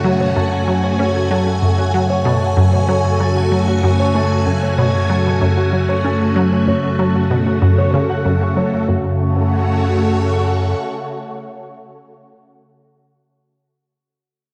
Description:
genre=ambient, sequencer-driven space music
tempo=95 BPM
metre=4/4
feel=straight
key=F# minor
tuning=A4 = 442 Hz
part: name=phased string machine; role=sustained chords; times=0.0-12.2 s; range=C#3 to G#5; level=-21 LUFS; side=equal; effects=ensemble chorus, phaser
part: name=concert harp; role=arpeggios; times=0.0-11.3 s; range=F#4 to C#6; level=-25 LUFS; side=equal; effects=analog delay
part: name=resonant blip pluck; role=riff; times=0.0-9.2 s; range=F#2 to C#4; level=-20 LUFS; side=equal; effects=chorus, analog delay
part: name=warm sub bass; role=bass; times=0.0-10.7 s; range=F#2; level=-22 LUFS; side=equal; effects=none
room=wet concert hall reverb, RT60 2.5 s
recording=dark, warm production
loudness=-16 LUFS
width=mono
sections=0.0-8.9 A section; 8.9-11.4 B section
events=none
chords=0.0 F#m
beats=0.04 0.68 | 1.31 1.94 2.57 3.20 | 3.83 4.47 5.10 5.73 | 6.36 6.99 7.62 8.26 | 8.89 9.52 10.15 10.78

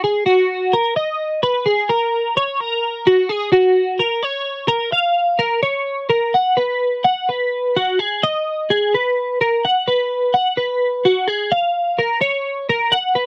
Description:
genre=rock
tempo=255 BPM (eighths)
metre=7/8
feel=straight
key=F# major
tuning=A4 = 440 Hz
part: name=twelve-string electric guitar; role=solo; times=0.0-13.3 s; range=F#4 to F#5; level=-18 LUFS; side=equal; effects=analog chorus
room=light reverb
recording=dry, close 1970s-style studio recording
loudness=-18 LUFS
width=mono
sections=0.0-4.9 A section; 4.9-13.3 B section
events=none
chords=none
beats=| 0.03 0.26 0.49 0.73 0.96 1.20 1.43 | 1.66 1.90 2.13 2.36 2.60 2.83 3.07 | 3.30 3.53 3.77 4.00 4.24 4.47 4.71 | 4.94 5.17 5.41 5.64 5.88 6.11 6.35 | 6.58 6.82 7.05 7.29 7.52 7.76 7.99 | 8.23 8.46 8.70 8.93 9.17 9.40 9.64 | 9.88 10.11 10.35 10.58 10.82 11.05 11.29 | 11.52 11.76 11.99 12.23 12.46 12.70 12.94 | 13.17

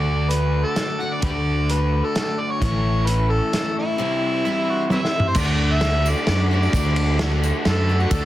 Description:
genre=folk rock and heartland rock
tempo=131 BPM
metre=3/4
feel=straight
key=D major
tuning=A4 = 440 Hz
part: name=overdriven harmonica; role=melody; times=0.0-8.2 s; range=E4 to F#5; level=-24 LUFS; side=equal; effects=slapback echo
part: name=picked steel-string acoustic guitar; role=accompaniment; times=0.0-8.2 s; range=A2 to C5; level=-30 LUFS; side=left 5 dB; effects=none
part: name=mellow tonewheel organ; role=sustained chords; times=0.0-8.2 s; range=G4 to D6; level=-36 LUFS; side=equal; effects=none
part: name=crunchy overdriven guitar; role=riff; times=0.0-8.2 s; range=A2 to F#4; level=-27 LUFS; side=equal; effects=none
part: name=fingered electric bass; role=bass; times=0.0-8.2 s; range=A1 to F#2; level=-20 LUFS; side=equal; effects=none
part: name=vintage drum kit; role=drums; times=0.3-8.2 s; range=crash cymbal, hi-hat, kick drum, ride cymbal, snare drum, toms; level=-24 LUFS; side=equal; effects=none
part: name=twangy electric guitar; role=second line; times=4.4-5.2 s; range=E4 to F#4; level=-29 LUFS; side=right 3 dB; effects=slapback echo
part: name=tambourine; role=percussion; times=5.4-8.2 s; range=none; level=-37 LUFS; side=right 7 dB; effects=none
room=light reverb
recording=dense, heavily limited modern master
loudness=-18 LUFS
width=side -14 dB against mid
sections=0.0-5.4 A section; 5.4-8.2 B section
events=drum fill 4.9-5.4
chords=0.0 D; 2.6 A; 4.0 C; 5.4 D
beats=0.32 0.78 | 1.24 1.70 2.15 | 2.61 3.07 3.53 | 3.99 4.45 4.91 | 5.37 5.82 6.28 | 6.74 7.20 7.65 | 8.11

